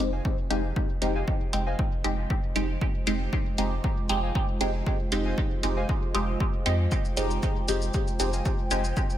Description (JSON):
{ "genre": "dub techno", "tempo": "117 BPM", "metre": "4/4", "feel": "straight", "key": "F minor", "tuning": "A4 = 440 Hz", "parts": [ { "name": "dark analog pad", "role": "sustained chords", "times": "0.0-9.2 s", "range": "Ab3 to G5", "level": "-36 LUFS", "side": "right 2 dB", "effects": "chorus, sidechain pumping" }, { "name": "filtered dub chord stab", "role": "stabs", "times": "0.0-8.8 s", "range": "Ab3 to G4", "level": "-30 LUFS", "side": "equal", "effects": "phaser, dub echo" }, { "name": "soft dub sub bass", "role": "bass", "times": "0.0-8.9 s", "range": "F1 to F2", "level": "-29 LUFS", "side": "equal", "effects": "sidechain pumping" }, { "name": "warbly lo-fi synth keys", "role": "riff", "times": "0.1-8.9 s", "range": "C5 to Ab5", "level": "-39 LUFS", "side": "left 2 dB", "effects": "chorus, sidechain pumping, dub echo" }, { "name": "electronic kick drum", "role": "drums", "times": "0.2-9.1 s", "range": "none", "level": "-28 LUFS", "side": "equal", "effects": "none" }, { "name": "electronic hi-hat and shaker", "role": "drums", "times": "0.5-9.2 s", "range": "none", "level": "-34 LUFS", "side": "equal", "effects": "none" } ], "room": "light reverb", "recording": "none", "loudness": "-24 LUFS", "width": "side -12 dB against mid", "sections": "0.0-9.2 A section", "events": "none", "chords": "0.0 Fm7" }